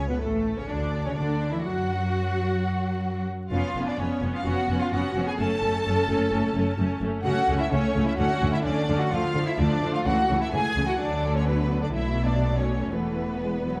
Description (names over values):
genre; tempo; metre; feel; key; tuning
classical, dramatic, fast romantic movement for symphony orchestra; 128 BPM; 4/4; straight; F# minor, A major from 7.2 s; A4 = 443 Hz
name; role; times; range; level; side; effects
rich symphonic violin section; melody; 0.0-13.8 s; A4 to A5; -34 LUFS; equal; none
warm symphonic violin section; second line; 0.0-13.8 s; A3 to A4; -32 LUFS; equal; none
rich symphonic viola section; accompaniment; 0.0-13.8 s; E3 to F#4; -31 LUFS; equal; none
rich symphonic cello section; bass; 0.0-13.8 s; E2 to F#3; -32 LUFS; equal; none
rich symphonic double bass section; bass; 0.0-13.8 s; E1 to F#2; -32 LUFS; equal; none
room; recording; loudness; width
wet recital hall reverb, RT60 1.3 s; vinyl crackle; -25 LUFS; mono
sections
0.0-13.8 A section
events
none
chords
0.0 Aadd11; 1.6 N.C.; 3.5 C#7/E#; 5.4 F#m; 7.2 A/C#; 8.2 D5; 9.1 Dm; 10.1 A/C#; 11.0 D; 11.9 B5; 12.9 Esus4